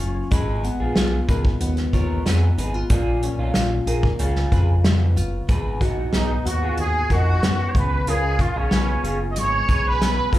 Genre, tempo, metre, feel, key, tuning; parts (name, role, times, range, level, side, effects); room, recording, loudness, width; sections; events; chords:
indie pop, bedroom pop; 93 BPM; 4/4; straight; G# dorian; A4 = 440 Hz
nylon-string guitar; accompaniment; 0.0-10.4 s; G#2 to A#4; -28 LUFS; left 3 dB; wide subtle chorus, warbly pitch drift
round analog bass; bass; 0.0-10.4 s; F#1 to F#2; -22 LUFS; equal
unplugged drum kit; drums; 0.0-10.4 s; hi-hat, kick drum, snare drum; -22 LUFS; equal
electric guitar through a small old amp; second line; 0.3-10.0 s; C#4 to C#5; -30 LUFS; right 1 dB; lush chorus, plate reverb, slapback echo, analog delay
clear trumpet; melody; 6.1-10.4 s; C#4 to D#5; -24 LUFS; right 1 dB; ensemble chorus, plate reverb, slapback echo, analog delay
moderate club reverb, RT60 0.7 s; live gig heard through the venue's PA, club reverb; -18 LUFS; side -14 dB against mid
0.0-5.5 A section; 5.5-10.4 B section
trumpet solo 5.5-10.4
0.3 G#m69; 2.9 A#m; 4.2 C#7; 5.5 G#m9; 7.8 C#6